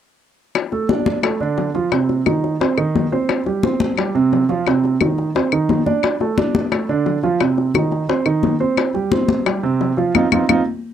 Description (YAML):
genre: Afro-Cuban jazz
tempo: 175 BPM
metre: 4/4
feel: straight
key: unclear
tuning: A4 = 440 Hz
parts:
  - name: congas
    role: percussion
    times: 0.5-10.6 s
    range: none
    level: -22 LUFS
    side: left 4 dB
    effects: none
  - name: bongos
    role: percussion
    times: 0.6-10.6 s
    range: none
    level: -23 LUFS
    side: left 8 dB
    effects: none
  - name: claves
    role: percussion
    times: 0.6-10.6 s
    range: none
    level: -22 LUFS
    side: left 12 dB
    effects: none
  - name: warm grand piano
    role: accompaniment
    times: 0.7-10.6 s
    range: C3 to D5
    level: -18 LUFS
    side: right 5 dB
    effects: none
room: moderate booth ambience, RT60 0.3 s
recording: dry, close 1970s-style studio recording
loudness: -16 LUFS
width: side -9 dB against mid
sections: 0.5-10.9 A section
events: band accent 10.1-10.9; drum fill 10.7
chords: 0.5 Dm; 1.9 Cm; 3.3 C5; 4.7 Cmadd9; 6.0 Dm; 7.4 Cm; 8.8 C5; 10.1 F5